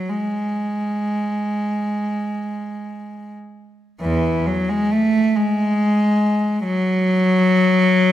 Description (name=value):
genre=classical, free, expressive piece for unaccompanied cello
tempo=20-48 BPM (dotted quarters)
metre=6/8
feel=rubato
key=unclear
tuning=A4 = 440 Hz
part: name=clear cello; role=solo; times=0.0-8.1 s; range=E2 to A3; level=-17 LUFS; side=equal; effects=none
room=moderate recital hall reverb, RT60 1.9 s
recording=none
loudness=-17 LUFS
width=side -12 dB against mid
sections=0.0-4.0 A section; 4.0-8.1 A section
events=none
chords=none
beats=| 0.08 1.82 | 4.00 5.35 | 6.64 7.91